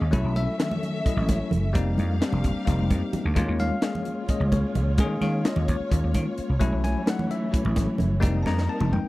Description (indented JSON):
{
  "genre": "electric jazz fusion",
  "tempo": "259 BPM (eighths)",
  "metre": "7/8",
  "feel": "straight",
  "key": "unclear",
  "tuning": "A4 = 441 Hz",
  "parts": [
    { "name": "bell-like tine electric piano", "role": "accompaniment", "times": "0.0-9.1 s", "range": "Eb3 to Bb5", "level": "-28 LUFS", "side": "left 3 dB", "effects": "fast stereo tremolo" },
    { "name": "warm studio string section", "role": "sustained chords", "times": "0.0-9.1 s", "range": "E3 to F5", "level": "-34 LUFS", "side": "equal", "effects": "none" },
    { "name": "vintage slap bass", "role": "bass", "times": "0.0-9.1 s", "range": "F1 to Eb3", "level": "-25 LUFS", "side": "equal", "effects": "none" },
    { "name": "crisp fusion drum kit", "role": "drums", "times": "0.1-9.0 s", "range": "hi-hat, kick drum, snare drum, toms", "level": "-26 LUFS", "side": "equal", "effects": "none" },
    { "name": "congas", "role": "percussion", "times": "0.1-8.9 s", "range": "none", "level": "-31 LUFS", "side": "right 2 dB", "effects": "none" }
  ],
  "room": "little or no reverb",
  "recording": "none",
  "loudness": "-22 LUFS",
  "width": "side -18 dB against mid",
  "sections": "0.0-9.1 A section",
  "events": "drum fill 8.5-9.1",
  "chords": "0.1 B9sus4; 1.7 F9sus4; 3.4 Eb9sus4; 6.6 B9sus4; 8.2 F9sus4"
}